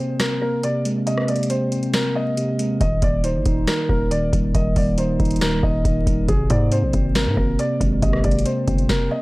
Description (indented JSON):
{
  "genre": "hip hop, trap",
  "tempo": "138 BPM",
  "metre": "4/4",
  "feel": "half-time",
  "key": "unclear",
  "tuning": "A4 = 443 Hz",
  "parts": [
    { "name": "felt-muted upright piano", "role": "melody", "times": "0.0-9.2 s", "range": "Ab4 to Eb5", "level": "-25 LUFS", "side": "equal", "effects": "low-pass filter, analog delay" },
    { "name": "mellow tine electric piano", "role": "accompaniment", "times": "0.0-9.2 s", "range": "C3 to Eb4", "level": "-22 LUFS", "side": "equal", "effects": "analog chorus, low-pass filter" },
    { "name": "booming analog drum machine", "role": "drums", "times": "0.2-9.1 s", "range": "hi-hat, kick drum, rim click, snare drum", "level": "-22 LUFS", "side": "equal", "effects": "none" },
    { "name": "distorted 808-style bass", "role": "bass", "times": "2.8-8.9 s", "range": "Eb1 to Ab2", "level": "-22 LUFS", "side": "equal", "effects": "distortion" }
  ],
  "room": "little or no reverb",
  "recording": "dry, gritty hardware recording, vinyl crackle",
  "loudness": "-18 LUFS",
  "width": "side -21 dB against mid",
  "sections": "0.0-9.2 A section",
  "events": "break 0.0-2.8",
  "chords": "0.0 Abadd9; 2.8 Eb; 6.3 Abadd9"
}